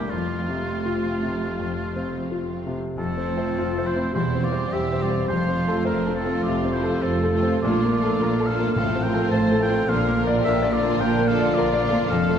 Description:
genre	classical, romantic movement for piano and orchestra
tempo	81-112 BPM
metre	4/4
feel	rubato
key	F major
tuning	A4 = 440 Hz
part	bright concert grand piano	melody	0.0-12.4 s	C2 to D5	-24 LUFS	left 2 dB	none
part	warm symphonic violin section	melody	0.0-12.4 s	C4 to C5	-33 LUFS	left 3 dB	none
part	clear oboe	second line	0.0-12.4 s	F4 to A5	-29 LUFS	right 2 dB	none
part	warm symphonic violin section	second line	0.0-12.1 s	C4 to F4	-33 LUFS	left 2 dB	none
part	warm chamber viola section	accompaniment	0.0-12.4 s	D3 to Bb3	-28 LUFS	right 2 dB	none
part	warm symphonic cello section	bass	0.0-12.4 s	E2 to C3	-30 LUFS	right 3 dB	none
part	warm symphonic double bass section	bass	0.0-12.4 s	E1 to C2	-31 LUFS	right 4 dB	none
part	timpani	percussion	8.8-9.6 s	A2	-33 LUFS	equal	none
room	wet concert hall reverb, RT60 1.9 s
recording	none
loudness	-20 LUFS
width	side -8 dB against mid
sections	0.0-3.0 A section; 3.0-12.4 B section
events	none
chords	0.1 F; 4.1 C/E; 5.3 F; 7.6 Bbmaj7; 8.7 F/A; 9.9 Bb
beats	| 0.12 0.86 1.59 2.30 | 2.98 3.56 4.14 4.73 | 5.30 5.87 6.45 7.02 | 7.62 8.19 8.75 9.31 | 9.88 10.44 10.99 11.54 | 12.08

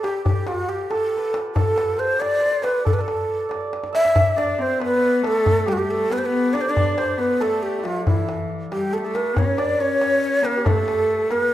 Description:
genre	Persian modal ensemble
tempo	92 BPM (dotted quarters)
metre	6/8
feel	straight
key	unclear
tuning	A4 = 440 Hz
part	breathy ney	melody	0.0-11.5 s	E4 to E5	-21 LUFS	equal	none
part	santur	second line	0.0-11.5 s	E4 to E5	-27 LUFS	right 2 dB	none
part	tombak	percussion	0.0-11.4 s	none	-24 LUFS	left 1 dB	none
part	rich cello	second line	4.4-11.5 s	E3 to D4	-26 LUFS	left 4 dB	none
room	moderate recital hall reverb, RT60 1.6 s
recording	minimal, uncompressed stereo recording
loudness	-18 LUFS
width	side -13 dB against mid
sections	0.0-9.4 A section; 9.4-11.5 B section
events	drum fill 3.7-4.2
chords	none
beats	| 0.25 0.90 | 1.55 2.20 | 2.85 3.50 | 4.15 4.80 | 5.46 6.11 | 6.76 7.41 | 8.06 8.71 | 9.36 10.01 | 10.66 11.31

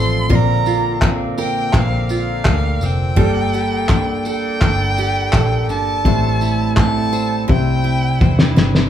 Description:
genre	acoustic pop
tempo	84 BPM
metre	4/4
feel	straight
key	unclear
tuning	A4 = 437 Hz
part	warm violin	melody	0.0-8.5 s	F5 to C6	-22 LUFS	right 1 dB	none
part	felt-muted upright piano	accompaniment	0.0-8.9 s	Bb3 to E5	-28 LUFS	left 6 dB	none
part	picked steel-string acoustic guitar	accompaniment	0.0-8.9 s	A2 to C5	-22 LUFS	right 5 dB	none
part	bright tonewheel organ	sustained chords	0.0-8.9 s	C3 to A4	-27 LUFS	left 2 dB	slow rotary speaker
part	vintage muted picked electric bass	bass	0.0-8.9 s	F1 to E2	-20 LUFS	left 1 dB	none
part	cloth-damped thuddy drum kit	drums	0.3-8.9 s	handclaps, kick drum, snare drum, tambourine	-17 LUFS	left 1 dB	none
room	moderate large studio reverb, RT60 1.4 s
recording	band playing live in one room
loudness	-14 LUFS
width	side -10 dB against mid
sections	0.0-8.9 A section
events	drum fill 7.5-8.9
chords	0.3 Bbadd9; 3.2 Gmadd9; 6.0 Am7; 7.5 C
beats	| 0.30 1.02 1.74 2.46 | 3.17 3.89 4.61 5.33 | 6.05 6.77 7.49 8.21

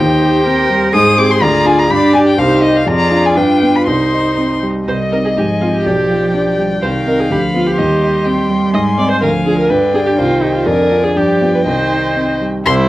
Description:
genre	quick classical-period movement for piano quintet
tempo	124 BPM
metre	2/4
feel	straight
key	C minor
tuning	A4 = 440 Hz
part	rich violin	melody	0.0-12.7 s	C5 to Eb6	-18 LUFS	left 3 dB	none
part	clear cello	second line	0.0-12.9 s	D3 to Bb4	-18 LUFS	right 3 dB	none
part	rich violin	second line	0.0-12.9 s	B4 to C6	-21 LUFS	left 1 dB	none
part	clear viola	accompaniment	0.0-12.9 s	Eb4 to Eb5	-17 LUFS	right 1 dB	none
part	warm grand piano	accompaniment	0.0-12.9 s	B1 to G4	-16 LUFS	left 1 dB	none
room	moderate large studio reverb, RT60 0.9 s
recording	worn, warbling old tape, cassette tape, warbly pitch drift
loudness	-11 LUFS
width	side -16 dB against mid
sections	0.0-4.9 A section; 4.9-12.7 A section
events	none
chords	0.0 Cm/Eb; 0.9 Abmaj7; 1.4 Ddim; 1.9 G; 2.4 Cm; 2.9 Ddim/F; 3.4 G7; 3.9 Cm; 5.4 Fm/Ab; 5.9 G7/B; 6.8 Cm; 7.3 G7/D; 7.8 Cm/Eb; 8.7 Abmaj7; 9.2 Ddim; 9.7 G; 10.2 Cm; 10.7 Ddim/F; 11.2 G7; 11.7 Cm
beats	0.46 | 0.94 1.42 | 1.91 2.38 | 2.87 3.37 | 3.87 4.38 | 4.88 5.37 | 5.86 6.34 | 6.83 7.31 | 7.79 8.26 | 8.74 9.22 | 9.70 10.19 | 10.67 11.16 | 11.66 12.16 | 12.66

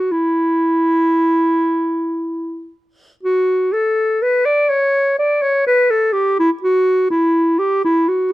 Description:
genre	classical, baroque-style fantasia for unaccompanied clarinet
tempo	57-63 BPM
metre	3/4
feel	rubato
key	unclear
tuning	A4 = 440 Hz
part	bright clarinet	solo	0.0-8.3 s	E4 to D5	-14 LUFS	equal	none
room	light reverb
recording	close, detailed microphones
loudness	-14 LUFS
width	side -16 dB against mid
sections	0.0-3.2 A section; 3.2-8.3 A section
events	none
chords	none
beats	| 0.12 1.17 2.21 | 3.24 4.22 5.19 | 6.15 7.11 8.08

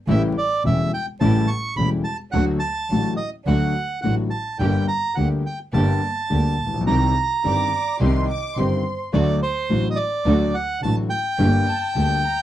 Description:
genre	tango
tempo	106 BPM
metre	4/4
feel	rubato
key	G harmonic minor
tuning	A4 = 439 Hz
part	bandoneon	melody	0.1-12.4 s	C5 to C#6	-24 LUFS	right 3 dB	none
part	warm concert grand piano	accompaniment	0.1-12.2 s	E1 to G4	-22 LUFS	left 3 dB	none
part	muted studio string section	stabs	0.1-12.2 s	A3 to G4	-29 LUFS	right 4 dB	none
part	clear double bass	bass	0.1-12.2 s	E1 to D2	-24 LUFS	right 1 dB	none
part	vibraphone with medium mallets	second line	7.4-9.0 s	C5 to Eb5	-30 LUFS	right 5 dB	none
part	warm studio violin section	second line	7.5-12.4 s	A5 to D6	-31 LUFS	left 2 dB	none
room	light reverb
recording	dry, close 1970s-style studio recording, vinyl crackle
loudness	-19 LUFS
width	side -12 dB against mid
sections	0.0-12.4 A section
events	none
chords	0.1 A7; 2.3 D; 4.6 Gm; 6.9 Cm; 9.1 D; 11.4 Gm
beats	| 0.08 0.64 1.21 1.77 | 2.34 2.90 3.47 4.04 | 4.61 5.18 5.75 6.32 | 6.88 7.45 8.01 8.58 | 9.14 9.71 10.27 10.83 | 11.40 11.96

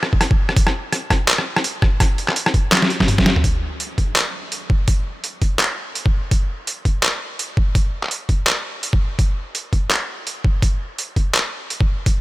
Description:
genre	drum and bass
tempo	167 BPM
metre	4/4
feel	swing 57% on 16ths, half-time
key	none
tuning	none
part	boom bap sampler-style drum kit	drums	0.0-12.1 s	handclaps, hi-hat, rim click, snare drum, toms	-19 LUFS	equal	overdrive
part	electronic kick drum	drums	0.1-12.1 s	none	-17 LUFS	equal	overdrive
room	digital ambience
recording	none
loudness	-17 LUFS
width	side -18 dB against mid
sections	0.0-3.4 A section; 3.4-12.2 B section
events	drum fill 2.7-3.4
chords	none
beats	0.21 | 0.56 0.93 1.28 1.64 | 2.00 2.36 2.72 3.08 | 3.44 3.80 4.16 4.52 | 4.88 5.24 5.59 5.96 | 6.31 6.67 7.03 7.39 | 7.75 8.11 8.47 8.83 | 9.19 9.55 9.91 10.27 | 10.62 10.98 11.34 11.70 | 12.06

